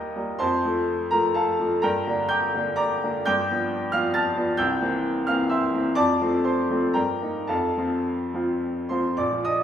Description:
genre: classical, romantic character piece for solo piano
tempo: 104-140 BPM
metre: 3/4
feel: rubato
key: unclear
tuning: A4 = 440 Hz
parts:
  - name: bright upright piano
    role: solo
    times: 0.0-9.6 s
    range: Bb1 to A6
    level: -21 LUFS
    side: equal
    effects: none
room: wet recital hall reverb, RT60 1.7 s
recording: recorded in a church or concert hall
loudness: -21 LUFS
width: side -9 dB against mid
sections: 0.0-9.2 A section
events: none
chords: 0.4 F; 1.8 Gm; 3.3 G7; 4.6 C7; 6.0 F; 7.0 Eb/G; 7.5 F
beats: | 0.41 0.89 1.36 | 1.84 2.32 2.78 | 3.27 3.71 4.14 | 4.58 5.04 5.51 | 5.97 6.46 6.96 | 7.49 8.06 8.63 | 9.20

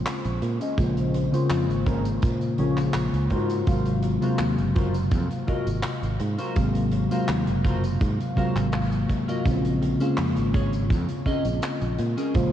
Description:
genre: vaporwave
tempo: 83 BPM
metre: 4/4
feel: straight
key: Bb minor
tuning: A4 = 440 Hz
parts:
  - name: mellow FM electric piano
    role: accompaniment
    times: 0.0-12.5 s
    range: C3 to F5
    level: -25 LUFS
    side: left 1 dB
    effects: analog chorus, cassette tape, analog delay
  - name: fingered electric bass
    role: bass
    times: 0.0-12.5 s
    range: Gb1 to Bb2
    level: -27 LUFS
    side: right 1 dB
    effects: none
  - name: big rock drum kit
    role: drums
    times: 0.1-12.5 s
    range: handclaps, hi-hat, tambourine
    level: -36 LUFS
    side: equal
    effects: vintage 12-bit sampler grit
  - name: clean electric guitar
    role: riff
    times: 0.4-12.3 s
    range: Db4 to Eb5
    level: -31 LUFS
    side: left 2 dB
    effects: analog chorus, low-pass filter, analog delay
  - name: kick drum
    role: drums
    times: 0.8-12.5 s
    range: none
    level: -27 LUFS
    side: right 1 dB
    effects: vintage 12-bit sampler grit
room: wet cathedral reverb, RT60 4.9 s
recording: dreamy mix soaked in reverb, cassette tape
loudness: -22 LUFS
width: side -11 dB against mid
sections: 0.0-12.5 A section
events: filter sweep on clean electric guitar 0.0-12.5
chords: 0.0 Bbm9; 3.3 Ab13; 9.5 Bbm9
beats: 0.06 | 0.78 1.50 2.23 2.95 | 3.67 4.39 5.12 5.84 | 6.56 7.29 8.01 8.73 | 9.46 10.18 10.90 11.62 | 12.35

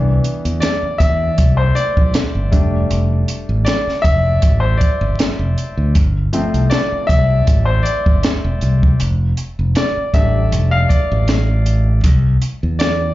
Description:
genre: lush 1970s-style soul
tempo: 79 BPM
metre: 4/4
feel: swing 54% on 16ths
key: unclear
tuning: A4 = 435 Hz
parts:
  - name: clear grand piano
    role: accompaniment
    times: 0.0-13.1 s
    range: E3 to F5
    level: -20 LUFS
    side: left 2 dB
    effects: plate reverb, slapback echo
  - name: modern bright fingered electric bass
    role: bass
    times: 0.0-13.1 s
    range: E1 to E2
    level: -15 LUFS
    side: equal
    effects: none
  - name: compact cocktail drum kit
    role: drums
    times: 0.2-13.0 s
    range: hi-hat, kick drum, snare drum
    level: -16 LUFS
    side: equal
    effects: none
room: little or no reverb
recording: live gig heard through the venue's PA, club reverb, nothing above 7.5 kHz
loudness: -13 LUFS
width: side -16 dB against mid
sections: 0.0-13.1 A section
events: grand piano solo 0.0-13.1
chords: 0.0 Cmaj9; 2.5 F69; 6.0 G9sus4; 9.0 F69; 12.0 Cadd9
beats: 0.63 1.39 2.15 | 2.91 3.67 4.43 5.20 | 5.96 6.72 7.48 8.24 | 9.00 9.76 10.53 11.29 | 12.05 12.81

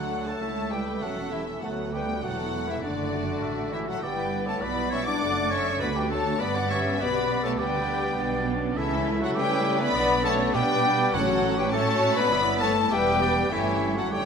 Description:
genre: quick classical-period movement for symphony orchestra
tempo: 101 BPM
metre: 4/4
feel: rubato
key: D major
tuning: A4 = 440 Hz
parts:
  - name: warm studio violin section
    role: melody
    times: 0.0-14.3 s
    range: D5 to D6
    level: -30 LUFS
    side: left 4 dB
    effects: none
  - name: clear oboe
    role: second line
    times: 0.0-14.3 s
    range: C#5 to F#5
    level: -36 LUFS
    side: right 2 dB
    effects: none
  - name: silver concert flute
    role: second line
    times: 0.0-14.3 s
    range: D5 to D6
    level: -33 LUFS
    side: equal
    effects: none
  - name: warm clarinet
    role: second line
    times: 0.0-14.3 s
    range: D4 to D5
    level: -32 LUFS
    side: left 2 dB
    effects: none
  - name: warm studio violin section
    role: second line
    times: 0.0-14.3 s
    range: F#4 to F#5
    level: -33 LUFS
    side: left 2 dB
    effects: none
  - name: mellow bassoon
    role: accompaniment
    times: 0.0-14.3 s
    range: A3 to C#4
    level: -33 LUFS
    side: equal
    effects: none
  - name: warm studio viola section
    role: accompaniment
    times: 0.0-14.3 s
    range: G3 to A4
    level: -34 LUFS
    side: right 1 dB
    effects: none
  - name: clear French horn section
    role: sustained chords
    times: 0.0-14.3 s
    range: D3 to D4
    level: -31 LUFS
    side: left 3 dB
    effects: none
  - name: rich studio cello section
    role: bass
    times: 0.0-14.3 s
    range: C#2 to C#4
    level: -34 LUFS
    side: right 6 dB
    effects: none
  - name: warm studio double bass section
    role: bass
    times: 0.0-14.3 s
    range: E1 to C#3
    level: -34 LUFS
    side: right 4 dB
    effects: none
  - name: timpani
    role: percussion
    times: 0.0-0.1, 11.1-12.0 s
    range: A2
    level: -36 LUFS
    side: equal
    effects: none
room: moderate scoring stage reverb, RT60 1.4 s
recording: minimal, uncompressed stereo recording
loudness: -23 LUFS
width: side -6 dB against mid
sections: 0.0-14.3 A section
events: none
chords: 0.4 A/C#; 1.6 D; 4.0 G; 5.2 D/F#; 6.4 G; 8.8 A/C#; 10.0 G/B; 11.1 F#m/A; 12.3 Em/G; 13.5 A7/G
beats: 0.41 1.02 | 1.62 2.23 2.83 3.44 | 4.03 4.62 5.22 5.82 | 6.41 7.00 7.59 8.18 | 8.77 9.36 9.95 10.55 | 11.14 11.73 12.32 12.92 | 13.52 14.12

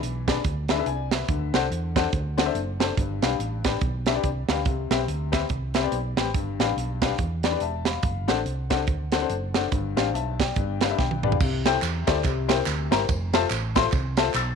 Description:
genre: uptempo gospel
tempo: 142 BPM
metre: 4/4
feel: swing 59% on 8ths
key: C major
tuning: A4 = 442 Hz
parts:
  - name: clear upright piano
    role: accompaniment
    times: 0.0-14.6 s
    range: G2 to A6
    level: -26 LUFS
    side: left 13 dB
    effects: none
  - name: hollow-body short-scale fingered electric bass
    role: bass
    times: 0.0-14.6 s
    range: E1 to E2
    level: -29 LUFS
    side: right 1 dB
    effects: tube saturation
  - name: tight funk drum kit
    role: drums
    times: 0.0-14.5 s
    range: crash cymbal, hi-hat, kick drum, ride cymbal, snare drum, toms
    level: -26 LUFS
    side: right 5 dB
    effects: none
  - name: tambourine and handclaps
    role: percussion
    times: 11.4-14.5 s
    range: none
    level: -34 LUFS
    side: right 8 dB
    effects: none
room: light reverb, small room reverb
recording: 1960s-style stereo with parts hard left and right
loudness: -22 LUFS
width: side -6 dB against mid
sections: 0.0-11.4 A section; 11.4-14.6 B section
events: upright piano fill 10.6-11.4; drum fill 11.0-11.4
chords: 0.0 E7; 1.3 D7; 3.0 G; 4.7 Cmaj7; 6.3 G7; 8.0 D7/F#; 9.7 G5; 10.6 G7; 11.4 C6; 12.2 C7; 13.1 Fmaj7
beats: 0.03 0.45 0.87 | 1.29 1.71 2.13 2.55 | 2.97 3.40 3.82 4.24 | 4.66 5.08 5.50 5.92 | 6.35 6.77 7.19 7.61 | 8.03 8.46 8.88 9.30 | 9.72 10.14 10.57 10.99 | 11.41 11.83 12.25 12.67 | 13.09 13.51 13.93 14.35

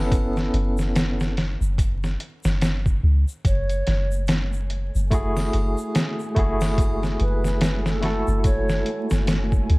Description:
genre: trip hop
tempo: 72 BPM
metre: 4/4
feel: swing 58% on 16ths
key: F# minor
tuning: A4 = 440 Hz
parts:
  - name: barky tine electric piano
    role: accompaniment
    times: 0.0-9.8 s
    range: A3 to A4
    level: -26 LUFS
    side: equal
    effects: tremolo, vintage 12-bit sampler grit, tape echo
  - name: soft 808-style bass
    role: bass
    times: 0.0-9.8 s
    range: F#1 to C#2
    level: -23 LUFS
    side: equal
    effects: none
  - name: trip hop sampler-style drum kit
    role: drums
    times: 0.1-9.8 s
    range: hi-hat, kick drum, snare drum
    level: -23 LUFS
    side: equal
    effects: studio reverb
  - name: egg shaker and triangle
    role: percussion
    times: 0.1-9.7 s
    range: none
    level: -45 LUFS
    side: left 3 dB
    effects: none
  - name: flickering grainy texture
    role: texture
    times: 3.8-9.8 s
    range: A3 to G#5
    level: -36 LUFS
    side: right 1 dB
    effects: built-in reverb
  - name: mellow wooden flute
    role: melody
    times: 3.5-9.0 s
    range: A4 to C#5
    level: -32 LUFS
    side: right 1 dB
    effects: tape echo
room: digital ambience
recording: dark, warm production, vinyl crackle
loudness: -20 LUFS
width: side -23 dB against mid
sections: 0.0-9.8 A section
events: none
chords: 0.0 Aadd9/F#; 3.4 F#m9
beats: | 0.12 0.95 1.78 2.62 | 3.45 4.28 5.12 5.95 | 6.78 7.62 8.45 9.28

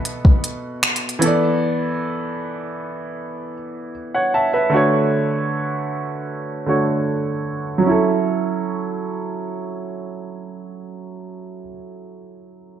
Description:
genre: contemporary R&B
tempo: 77 BPM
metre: 4/4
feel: straight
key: F# minor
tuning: A4 = 439 Hz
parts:
  - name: clear grand piano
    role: accompaniment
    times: 0.0-12.8 s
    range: B2 to A5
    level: -20 LUFS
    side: right 2 dB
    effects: low-pass filter
  - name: smooth R&B drum kit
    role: drums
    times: 0.1-1.4 s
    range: finger snaps, hi-hat, kick drum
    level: -15 LUFS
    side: equal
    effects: none
room: light reverb, digital ambience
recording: none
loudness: -18 LUFS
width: side -9 dB against mid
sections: 0.0-7.8 A section; 7.8-11.0 B section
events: filter sweep on grand piano 0.0-7.8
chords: 0.0 B7sus4; 1.2 E7sus4; 4.7 Dmaj7; 7.8 F#m7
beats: 0.05 0.83 | 1.61 2.38 3.16 3.94 | 4.72 5.50 6.28 7.06 | 7.84 8.62 9.40 10.18

